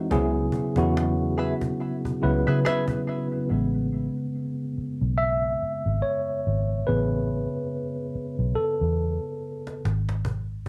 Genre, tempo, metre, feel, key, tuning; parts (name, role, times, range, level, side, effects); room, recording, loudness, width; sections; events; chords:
R&B, neo-soul; 71 BPM; 4/4; swing 56% on 16ths; A major; A4 = 440 Hz
mellow tine electric piano; accompaniment; 0.0-9.8 s; C#3 to E5; -28 LUFS; equal; cassette tape
vintage muted fingered electric bass; bass; 0.1-10.7 s; G#1 to C#3; -28 LUFS; equal
cajon; drums; 0.1-3.4, 9.7-10.7 s; -35 LUFS; equal; cassette tape
hollow-body jazz guitar; second line; 1.4-2.8 s; G#4 to E5; -34 LUFS; equal; wah, cassette tape, analog delay
light reverb; home recording on cassette; -26 LUFS; mono
0.0-3.5 A section; 3.5-10.7 B section
tine electric piano solo 3.5-10.7; drum fill 8.6-10.2
0.1 C#m7; 3.5 Amaj9; 9.8 N.C.